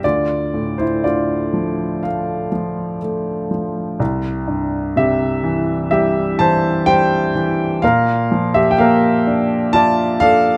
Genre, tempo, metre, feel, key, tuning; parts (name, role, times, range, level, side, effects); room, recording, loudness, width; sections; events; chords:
classical, lyrical solo piano; 62 BPM; 4/4; rubato; D minor; A4 = 440 Hz
warm upright piano; solo; 0.0-10.6 s; C2 to A5; -17 LUFS; equal
light reverb; close, detailed microphones; -17 LUFS; mono
0.0-10.6 A section
0.0 Dmadd9; 4.0 C; 7.8 Bb